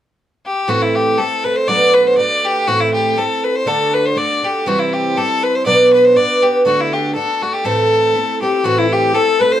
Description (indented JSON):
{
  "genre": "celtic folk",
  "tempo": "120 BPM",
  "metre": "2/4",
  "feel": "swing 54% on 8ths",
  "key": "A dorian",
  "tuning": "A4 = 442 Hz",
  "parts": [
    { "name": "bright fiddle", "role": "melody", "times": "0.5-9.6 s", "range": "E4 to D5", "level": "-16 LUFS", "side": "left 2 dB", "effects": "none" },
    { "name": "picked twelve-string acoustic guitar", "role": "accompaniment", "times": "0.7-9.6 s", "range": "A2 to C5", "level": "-15 LUFS", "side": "right 2 dB", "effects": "none" },
    { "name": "mellow wooden flute", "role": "second line", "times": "8.4-9.6 s", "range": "E4 to C5", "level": "-16 LUFS", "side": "left 6 dB", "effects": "none" }
  ],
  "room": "wet small room reverb, RT60 0.5 s",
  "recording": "dark, warm production",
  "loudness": "-12 LUFS",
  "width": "side -11 dB against mid",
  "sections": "0.7-8.6 A section",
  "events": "none",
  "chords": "0.0 N.C.; 0.7 Am; 1.7 Bm7; 2.7 Am; 3.7 D; 4.7 C; 5.7 Bm; 6.7 D; 7.7 Am"
}